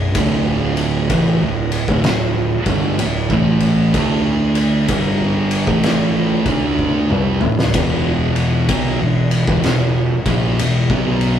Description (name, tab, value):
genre	stoner and doom metal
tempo	63 BPM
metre	4/4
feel	swing 65% on 8ths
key	unclear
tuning	A4 = 442 Hz
part	thick fuzz guitar	riff	0.0-11.4 s	D2 to D4	-21 LUFS	left 6 dB	distortion
part	thick fuzz guitar	riff	0.0-11.4 s	D2 to D4	-18 LUFS	right 4 dB	distortion
part	fuzz fingered electric bass	bass	0.0-11.4 s	B0 to D2	-26 LUFS	left 1 dB	overdrive
part	oversized low-tuned drum kit	drums	0.1-11.4 s	kick drum, ride cymbal, snare drum, toms	-19 LUFS	equal	none
room	light reverb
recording	rough rehearsal-room recording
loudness	-14 LUFS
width	side -9 dB against mid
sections	0.0-11.4 A section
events	drum fill 6.8-7.7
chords	0.1 D5; 7.7 E5